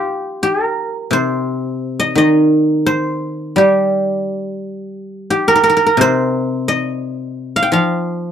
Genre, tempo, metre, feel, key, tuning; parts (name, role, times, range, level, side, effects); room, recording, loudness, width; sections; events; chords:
chinese traditional, Chinese solo plucked strings; 86 BPM; 4/4; rubato; G jue mode; A4 = 438 Hz
guzheng; solo; 0.0-8.3 s; C3 to G5; -14 LUFS; equal
light reverb; dry, close 1970s-style studio recording; -14 LUFS; side -9 dB against mid
0.0-8.3 A section